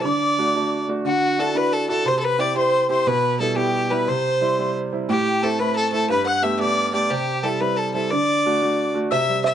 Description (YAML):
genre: celtic folk, Celtic jig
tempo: 119 BPM (dotted quarters)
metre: 6/8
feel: straight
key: D mixolydian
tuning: A4 = 439 Hz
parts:
  - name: rich fiddle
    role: melody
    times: 0.0-9.5 s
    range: F#4 to F#5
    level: -21 LUFS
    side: equal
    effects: none
  - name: breathy mid whistle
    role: second line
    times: 0.0-9.5 s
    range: F#5 to F#6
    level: -26 LUFS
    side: left 5 dB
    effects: none
  - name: bright upright piano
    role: accompaniment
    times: 0.0-9.5 s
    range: G2 to G4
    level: -23 LUFS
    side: right 3 dB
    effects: none
  - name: open-back banjo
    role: second line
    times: 9.1-9.5 s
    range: E5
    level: -25 LUFS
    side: right 9 dB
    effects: none
room: moderate studio reverb, RT60 0.8 s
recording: dark, warm production, nothing above 10.4 kHz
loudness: -18 LUFS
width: side -10 dB against mid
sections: 0.0-1.1 A section; 1.1-9.1 A section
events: none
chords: 0.1 D; 1.1 Dadd9; 2.1 C; 3.1 Em/B; 4.1 C; 5.1 Am; 6.1 Gadd9; 7.1 C; 8.1 D